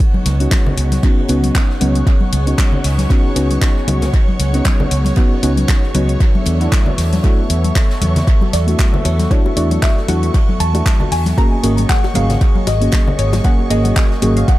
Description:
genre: deep house.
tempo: 116 BPM.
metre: 4/4.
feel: swing 56% on 16ths.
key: C# minor.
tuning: A4 = 440 Hz.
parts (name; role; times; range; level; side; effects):
warm analog pad; sustained chords; 0.0-14.6 s; A#3 to C#6; -26 LUFS; equal; chorus, sidechain pumping.
deep house drum kit; drums; 0.0-14.6 s; handclaps, hi-hat; -25 LUFS; left 1 dB; overdrive, dub echo.
electronic kick drum; drums; 0.0-14.6 s; none; -14 LUFS; equal; overdrive.
unplugged drum kit; drums; 0.0-14.6 s; hi-hat, ride cymbal, snare drum; -34 LUFS; right 2 dB; sidechain pumping on cymbals, high-pass filter on cymbals, sidechain pumping on hats, high-pass filter on hats, high-pass filter on snare, high-pass filter on room, dub echo.
string machine, violins; texture; 0.0-14.6 s; C#5 to C#6; -31 LUFS; equal; ensemble chorus, sidechain pumping.
congas and bongos; percussion; 0.1-14.3 s; none; -23 LUFS; left 3 dB; sidechain pumping on perc, dub echo.
vintage muted fingered electric bass; bass; 0.3-14.4 s; G#1 to E2; -16 LUFS; equal; sidechain pumping.
deep mellow chord stab; stabs; 0.4-14.4 s; A3 to G#4; -21 LUFS; equal; chorus, sidechain pumping, dub echo.
soft round pluck; melody; 8.5-14.6 s; C#5 to A#5; -23 LUFS; left 1 dB; wide subtle chorus, tape echo.
room: light reverb, studio reverb.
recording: echo-heavy mix.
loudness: -12 LUFS.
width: side -16 dB against mid.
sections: 0.0-14.6 A section.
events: none.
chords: 0.0 C#9sus4; 6.2 E9sus4; 11.4 G#9sus4.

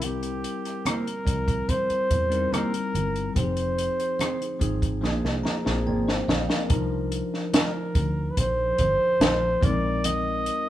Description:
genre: lush 1970s-style soul.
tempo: 72 BPM.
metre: 4/4.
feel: straight.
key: C minor.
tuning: A4 = 440 Hz.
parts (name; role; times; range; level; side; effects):
warm flugelhorn; melody; 0.0-10.7 s; G4 to Eb5; -26 LUFS; right 1 dB; none.
bell-like tine electric piano; accompaniment; 0.0-10.7 s; F3 to Bb5; -30 LUFS; left 2 dB; phaser.
vintage muted fingered electric bass; bass; 0.0-10.5 s; F1 to E2; -30 LUFS; equal; none.
compact cocktail drum kit; drums; 0.0-10.7 s; hi-hat, kick drum, rim click, snare drum; -26 LUFS; equal; none.
congas; percussion; 0.0-10.2 s; none; -35 LUFS; right 1 dB; none.
mellow electric guitar; riff; 0.9-9.4 s; Bb3 to D5; -33 LUFS; right 3 dB; none.
room: moderate large studio reverb, RT60 1.3 s.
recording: band playing live in one room.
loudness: -22 LUFS.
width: side -13 dB against mid.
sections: 0.0-6.7 A section; 6.7-10.7 B section.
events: drum fill 5.0-6.7; tine electric piano fill 5.0-6.7.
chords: 0.0 C7; 3.4 Fm7; 5.0 Bb7; 6.7 Cm11; 9.6 Bb9sus4.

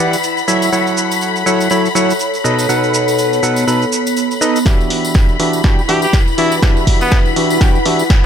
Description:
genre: piano house.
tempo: 122 BPM.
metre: 4/4.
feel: swing 58% on 16ths.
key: E dorian.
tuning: A4 = 440 Hz.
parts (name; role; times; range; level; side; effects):
rich studio string section; sustained chords; 0.0-8.3 s; B5; -21 LUFS; left 6 dB; sidechain pumping, low-pass filter.
percussive organ stab; riff; 0.0-8.0 s; B2 to B5; -16 LUFS; right 1 dB; chorus, sidechain pumping, dub echo.
warbly tape-like pad; texture; 0.0-8.3 s; B3 to F#5; -20 LUFS; equal; chorus, built-in reverb, sidechain pumping.
punchy analog drum machine; drums; 0.1-8.2 s; hi-hat, shaker, snare drum; -22 LUFS; right 2 dB; high-pass filter on perc, small room ambience, high-pass filter on snare, high-pass filter on hats.
tambourine; percussion; 0.1-8.2 s; none; -28 LUFS; right 1 dB; none.
electronic kick drum; drums; 4.7-8.2 s; none; -12 LUFS; equal; small room ambience.
bright trumpet; melody; 5.9-7.2 s; B3 to G4; -23 LUFS; equal; dub echo.
room: light reverb.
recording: none.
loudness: -11 LUFS.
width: side -8 dB against mid.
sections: 0.0-4.7 A section; 4.7-8.3 B section.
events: build-up 4.7-8.3; drum fill 4.7-8.3.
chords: 0.5 F#m7; 2.4 B7; 4.7 Em9.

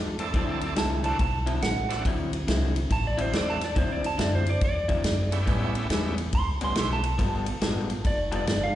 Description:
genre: electric blues shuffle.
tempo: 140 BPM.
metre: 4/4.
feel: swing 65% on 8ths.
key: D mixolydian.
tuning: A4 = 444 Hz.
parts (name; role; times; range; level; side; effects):
upright bass; bass; 0.0-8.8 s; F1 to A2; -29 LUFS; equal; none.
bright tonewheel organ; accompaniment; 0.2-7.0 s; A3 to A4; -33 LUFS; right 4 dB; slow rotary speaker, overdrive, slapback echo.
electric guitar through a small old amp; riff; 0.2-8.5 s; A2 to A4; -32 LUFS; left 3 dB; spring reverb, slapback echo.
natural country drum kit; drums; 0.2-8.6 s; kick drum, ride cymbal, snare drum; -28 LUFS; equal; none.
electric slide guitar; second line; 0.8-8.8 s; C5 to C6; -30 LUFS; right 2 dB; slapback echo.
room: light reverb.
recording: live gig heard through the venue's PA, recital hall reverb, nothing above 10.5 kHz.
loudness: -24 LUFS.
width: side -13 dB against mid.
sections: 0.0-8.8 A section.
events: electric slide guitar solo 0.0-8.8.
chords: 0.3 D9; 5.5 A9; 7.2 G9.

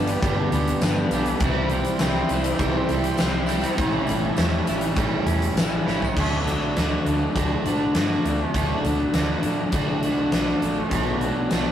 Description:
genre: rock, shoegaze and dream pop.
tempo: 101 BPM.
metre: 4/4.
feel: straight.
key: D major from 6.2 s.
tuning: A4 = 440 Hz.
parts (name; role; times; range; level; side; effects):
sweeping resonant pad; sustained chords; 0.0-6.1 s; G4 to C6; -34 LUFS; right 1 dB; chorus.
electric guitar at the edge of break-up; riff; 0.0-11.7 s; G2 to G4; -26 LUFS; right 3 dB; none.
overdriven semi-hollow guitar; riff; 0.0-11.7 s; A2 to E4; -25 LUFS; left 2 dB; none.
vintage muted fingered electric bass; bass; 0.0-11.7 s; G1 to D3; -29 LUFS; equal; none.
huge arena drum kit; drums; 0.1-11.7 s; crash cymbal, hi-hat, kick drum, snare drum, toms; -25 LUFS; equal; none.
tambourine; percussion; 0.1-6.2 s; none; -43 LUFS; left 3 dB; none.
room: wet studio reverb, RT60 0.7 s.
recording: rough rehearsal-room recording, tube saturation.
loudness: -20 LUFS.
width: side -10 dB against mid.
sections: 0.0-6.2 A section; 6.2-11.7 B section.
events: drum fill 5.9.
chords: 0.0 G; 1.4 C; 3.8 A7; 6.2 D; 10.9 Bm7.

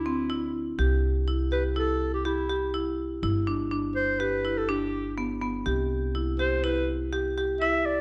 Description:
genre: contemporary instrumental, chamber music in an uneven meter.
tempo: 123 BPM.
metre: 5/4.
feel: straight.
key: unclear.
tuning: A4 = 440 Hz.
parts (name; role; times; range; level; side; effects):
breathy clarinet; melody; 0.0-8.0 s; E4 to E5; -31 LUFS; equal; none.
upright bass; bass; 0.0-8.0 s; G1 to D2; -33 LUFS; equal; none.
marimba with hard mallets; arpeggios; 0.1-8.0 s; B3 to G4; -31 LUFS; equal; none.
room: light reverb.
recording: none.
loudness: -28 LUFS.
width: mono.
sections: 0.8-8.0 A section.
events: none.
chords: 0.0 D7sus2; 0.8 C; 3.2 G; 5.7 C.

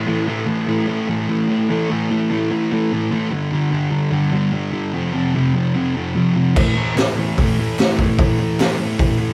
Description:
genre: garage rock duo or trio.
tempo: 148 BPM.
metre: 4/4.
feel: straight.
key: unclear.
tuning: A4 = 440 Hz.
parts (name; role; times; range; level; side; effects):
fuzz guitar; riff; 0.0-9.3 s; F2 to A3; -20 LUFS; equal; distortion.
raw garage drum kit; drums; 6.6-9.1 s; crash cymbal, hi-hat, kick drum, snare drum; -22 LUFS; equal; none.
group handclap; percussion; 7.0-8.7 s; none; -36 LUFS; equal; none.
room: moderate studio reverb, RT60 0.7 s.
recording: band playing live in one room.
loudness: -19 LUFS.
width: mono.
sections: 0.1-9.3 A section.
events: none.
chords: 0.1 A5; 3.3 G5; 4.9 F5; 6.6 A5.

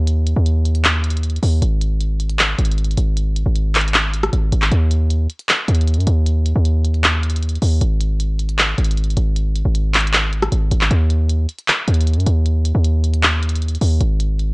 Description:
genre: hip hop, trap.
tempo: 155 BPM.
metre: 4/4.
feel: half-time.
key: unclear.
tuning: A4 = 444 Hz.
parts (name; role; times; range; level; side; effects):
hard-hitting 808-style bass; bass; 0.0-14.5 s; Ab1 to Gb2; -16 LUFS; equal; none.
glitchy drum kit; drums; 0.1-14.5 s; handclaps, hi-hat, rim click; -18 LUFS; equal; vintage 12-bit sampler grit.
room: digital ambience.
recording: worn, warbling old tape, cassette tape, warbly pitch drift.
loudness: -15 LUFS.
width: side -28 dB against mid.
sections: 0.0-10.9 A section; 10.9-14.5 A section.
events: none.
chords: none.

